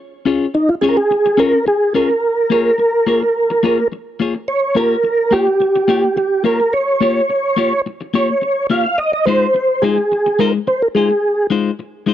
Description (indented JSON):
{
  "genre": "funk",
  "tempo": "107 BPM",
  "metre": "4/4",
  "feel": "straight",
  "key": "Bb dorian",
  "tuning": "A4 = 438 Hz",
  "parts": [
    { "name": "clean electric guitar", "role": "accompaniment", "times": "0.3-12.1 s", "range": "Ab3 to Db5", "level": "-17 LUFS", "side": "left 5 dB", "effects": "none" },
    { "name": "tonewheel organ", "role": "melody", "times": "0.5-11.5 s", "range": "Eb4 to F5", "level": "-14 LUFS", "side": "right 1 dB", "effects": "chorus vibrato, slow rotary speaker" }
  ],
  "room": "little or no reverb",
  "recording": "dry, close 1970s-style studio recording",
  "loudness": "-13 LUFS",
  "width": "side -11 dB against mid",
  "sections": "0.0-4.5 A section; 4.5-12.1 B section",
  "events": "none",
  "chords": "0.0 Bbm7; 2.2 Db6; 4.5 Bbm6; 9.0 Fm7",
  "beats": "0.54 1.10 1.67 | 2.23 2.79 3.35 3.92 | 4.48 5.04 5.60 6.17 | 6.73 7.29 7.85 8.41 | 8.98 9.54 10.10 10.66 | 11.23 11.79"
}